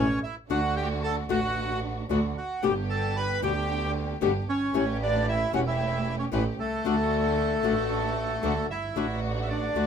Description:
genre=tango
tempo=113 BPM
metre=4/4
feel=rubato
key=D major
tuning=A4 = 441 Hz
part: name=bandoneon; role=melody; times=0.0-9.9 s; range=A3 to B5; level=-28 LUFS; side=equal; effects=none
part: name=flamenco guitar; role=accompaniment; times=0.0-9.9 s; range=B2 to G4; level=-26 LUFS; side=left 7 dB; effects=none
part: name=clear double bass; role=bass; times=0.0-9.9 s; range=E1 to D2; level=-30 LUFS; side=right 3 dB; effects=none
part: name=warm studio string section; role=stabs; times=0.5-9.9 s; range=D3 to G4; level=-34 LUFS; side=right 2 dB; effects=none
room=moderate studio ambience, RT60 0.5 s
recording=minimal, uncompressed stereo recording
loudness=-25 LUFS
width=side -7 dB against mid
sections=0.0-9.9 A section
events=none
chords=0.5 D; 2.6 G; 4.7 A7; 6.8 D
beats=| 0.50 1.03 1.56 2.10 | 2.63 3.15 3.68 4.21 | 4.74 5.27 5.79 6.32 | 6.84 7.37 7.90 8.43 | 8.96 9.49

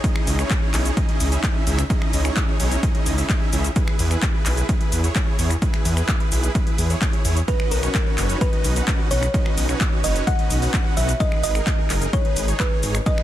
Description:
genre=EDM, festival progressive house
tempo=129 BPM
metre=4/4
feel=straight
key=unclear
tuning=A4 = 439 Hz
part: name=supersaw chords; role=riff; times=0.0-13.2 s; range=C#4 to F#5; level=-27 LUFS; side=right 1 dB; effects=vintage 12-bit sampler grit, sidechain pumping, ping-pong delay
part: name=big-room dance drum kit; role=drums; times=0.0-13.2 s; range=finger snaps, handclaps, hi-hat, shaker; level=-28 LUFS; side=left 1 dB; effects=overdrive
part: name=electronic kick drum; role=drums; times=0.0-13.2 s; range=none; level=-21 LUFS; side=equal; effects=overdrive
part: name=detuned saw bass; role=bass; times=0.3-13.0 s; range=F#1 to E2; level=-22 LUFS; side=equal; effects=sidechain pumping
part: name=thumb-piano-like synth pluck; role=melody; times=7.5-13.2 s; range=A#4 to F#5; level=-27 LUFS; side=equal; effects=chorus, ping-pong delay
room=little or no reverb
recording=dense, heavily limited modern master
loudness=-18 LUFS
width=side -13 dB against mid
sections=0.0-13.2 A section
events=none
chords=0.0 C#madd9; 3.8 E; 7.5 Badd9; 11.2 G#m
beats=| 0.04 0.50 0.97 1.44 | 1.90 2.37 2.83 3.29 | 3.76 4.22 4.69 5.16 | 5.62 6.09 6.55 7.02 | 7.48 7.95 8.41 8.88 | 9.34 9.81 10.27 10.74 | 11.20 11.67 12.13 12.60 | 13.06

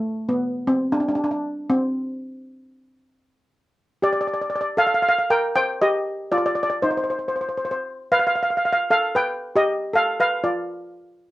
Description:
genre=calypso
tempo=117 BPM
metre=4/4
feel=straight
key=unclear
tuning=A4 = 440 Hz
part: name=steel pan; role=solo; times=0.0-11.3 s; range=A3 to G5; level=-20 LUFS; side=equal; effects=none
room=light reverb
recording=close, detailed microphones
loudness=-20 LUFS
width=side -17 dB against mid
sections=0.0-4.0 A section; 4.0-11.3 B section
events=none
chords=0.0 N.C.; 4.0 Cm; 8.1 G7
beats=0.41 0.93 1.44 | 1.96 2.47 2.99 3.50 | 4.02 4.53 5.05 5.56 | 6.07 6.59 7.10 7.61 | 8.13 8.64 9.15 9.67 | 10.18 10.69 11.21

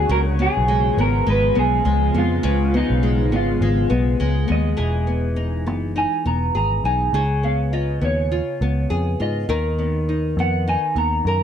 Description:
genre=indie pop, bedroom pop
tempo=102 BPM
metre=4/4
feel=swing 60% on 16ths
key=unclear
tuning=A4 = 439 Hz
part: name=electric guitar through a small old amp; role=melody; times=0.0-11.4 s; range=D#4 to A#5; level=-23 LUFS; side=right 1 dB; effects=wide subtle chorus
part: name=nylon-string guitar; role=accompaniment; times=0.0-11.4 s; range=C#3 to A#4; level=-24 LUFS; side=left 2 dB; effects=wide subtle chorus, warbly pitch drift
part: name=shimmering ambient pad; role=sustained chords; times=0.0-4.8 s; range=C#3 to E#4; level=-28 LUFS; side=left 1 dB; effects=chorus, built-in reverb
part: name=vintage muted picked electric bass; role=bass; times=0.0-11.4 s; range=E1 to G#2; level=-21 LUFS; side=equal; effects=none
room=light reverb, digital ambience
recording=dark, warm production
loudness=-18 LUFS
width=side -9 dB against mid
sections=0.0-4.8 A section; 4.8-11.4 B section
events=none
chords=0.1 C#7; 4.8 Emaj7; 7.1 C#7; 9.5 Bmaj7/D#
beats=| 0.09 0.68 1.27 1.86 | 2.44 3.03 3.62 4.21 | 4.79 5.38 5.97 6.56 | 7.15 7.74 8.32 8.91 | 9.50 10.09 10.68 11.27

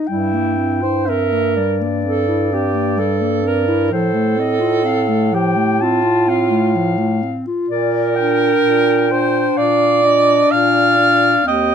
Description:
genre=classical, lyrical piece for single-reed quartet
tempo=64 BPM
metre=4/4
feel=rubato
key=Bb major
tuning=A4 = 437 Hz
part: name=clear clarinet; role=melody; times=0.0-11.7 s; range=C5 to A5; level=-23 LUFS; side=left 9 dB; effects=none
part: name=warm clarinet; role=accompaniment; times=0.0-11.7 s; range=F3 to F4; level=-20 LUFS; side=left 5 dB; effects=none
part: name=bright alto saxophone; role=second line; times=0.1-11.7 s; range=E4 to F5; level=-16 LUFS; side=right 5 dB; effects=none
part: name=clear bass clarinet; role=bass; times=0.1-11.7 s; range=Eb2 to Bb2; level=-21 LUFS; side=right 1 dB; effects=none
room=light reverb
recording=minimal, uncompressed stereo recording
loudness=-13 LUFS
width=side -8 dB against mid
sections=0.0-11.7 A section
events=none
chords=0.1 C7/G; 3.9 F/A; 7.7 Bb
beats=| 0.08 1.07 2.04 2.99 | 3.92 4.86 5.81 6.75 | 7.70 8.63 9.57 10.51 | 11.46

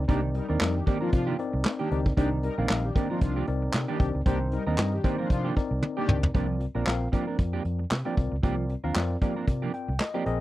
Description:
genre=early-eighties boogie funk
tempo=115 BPM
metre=4/4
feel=swing 56% on 16ths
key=C minor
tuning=A4 = 439 Hz
part: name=tine electric piano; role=accompaniment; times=0.0-10.4 s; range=C4 to G5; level=-32 LUFS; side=left 3 dB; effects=overdrive, medium stereo tremolo
part: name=vintage muted fingered electric bass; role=bass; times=0.0-10.4 s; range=Bb1 to C3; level=-29 LUFS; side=equal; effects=none
part: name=mellow synth brass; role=second line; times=0.1-6.2 s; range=Eb3 to Bb4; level=-32 LUFS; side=left 2 dB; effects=chorus
part: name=clean electric guitar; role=riff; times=0.1-10.3 s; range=Eb3 to Bb4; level=-32 LUFS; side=right 7 dB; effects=analog chorus
part: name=vintage brush drum kit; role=drums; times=0.1-10.4 s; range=handclaps, hi-hat, kick drum, snare drum, toms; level=-26 LUFS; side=equal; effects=none
room=little or no reverb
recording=dry, close 1970s-style studio recording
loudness=-24 LUFS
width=side -16 dB against mid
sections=0.0-6.3 A section; 6.3-10.4 B section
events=drum fill 5.8-6.3; tine electric piano fill 9.5-10.4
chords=0.0 Cm9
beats=| 0.09 0.61 1.13 1.65 | 2.17 2.69 3.22 3.74 | 4.26 4.78 5.30 5.83 | 6.35 6.87 7.39 7.91 | 8.43 8.96 9.48 10.00

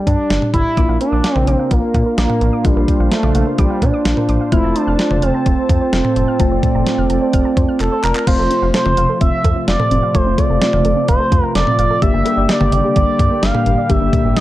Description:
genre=synth-pop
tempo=128 BPM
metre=4/4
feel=straight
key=unclear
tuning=A4 = 440 Hz
part: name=expressive synth lead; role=melody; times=0.0-14.4 s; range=G3 to F5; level=-18 LUFS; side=right 2 dB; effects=chorus, slapback echo
part: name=muted felt-like synth keys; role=accompaniment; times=0.0-14.4 s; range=G3 to G4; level=-23 LUFS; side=left 5 dB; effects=chorus
part: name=rubbery square bass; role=bass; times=0.1-14.3 s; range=F1 to Bb2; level=-19 LUFS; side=equal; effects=none
part: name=clean 12-bit digital drum machine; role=drums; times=0.1-14.4 s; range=cowbell, crash cymbal, handclaps, hi-hat, kick drum, snare drum, toms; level=-18 LUFS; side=equal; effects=none
part: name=warm analog pad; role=sustained chords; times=0.8-14.4 s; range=C3 to A5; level=-24 LUFS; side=right 1 dB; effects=chorus
part: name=soft round pluck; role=arpeggios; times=0.8-14.4 s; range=Bb3 to F6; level=-28 LUFS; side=right 4 dB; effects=chorus, slapback echo
room=light reverb, digital ambience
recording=dark, warm production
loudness=-13 LUFS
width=side -15 dB against mid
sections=0.0-8.3 A section; 8.3-14.4 B section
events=drum fill 7.8-8.3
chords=0.0 G5; 0.8 Bb; 4.5 F; 12.0 Gm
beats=0.30 | 0.77 1.24 1.71 2.18 | 2.65 3.12 3.58 4.05 | 4.52 4.99 5.46 5.93 | 6.40 6.87 7.33 7.80 | 8.27 8.74 9.21 9.68 | 10.15 10.62 11.08 11.55 | 12.02 12.49 12.96 13.43 | 13.90 14.37

